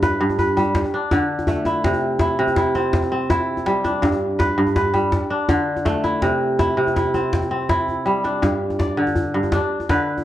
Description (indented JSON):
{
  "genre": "west african traditional, West African string and xylophone music",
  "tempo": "109 BPM (dotted quarters)",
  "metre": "12/8",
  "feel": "straight",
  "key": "G major",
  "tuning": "A4 = 439 Hz",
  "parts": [
    { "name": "kora", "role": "arpeggios", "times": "0.0-10.2 s", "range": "G2 to D5", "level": "-19 LUFS", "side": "equal", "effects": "none" },
    { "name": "djembe", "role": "percussion", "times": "0.0-10.2 s", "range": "none", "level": "-23 LUFS", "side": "left 1 dB", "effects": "none" }
  ],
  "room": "moderate spring reverb, RT60 1.7 s, studio ambience",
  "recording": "worn, warbling old tape, cassette tape, warbly pitch drift",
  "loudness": "-18 LUFS",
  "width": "side -13 dB against mid",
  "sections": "0.0-8.4 A section; 8.4-10.2 B section",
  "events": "drum fill 7.9-8.4",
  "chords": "0.0 G; 0.8 D5; 1.8 C; 4.0 G; 5.1 D5; 6.2 C; 8.4 G5; 9.5 D5"
}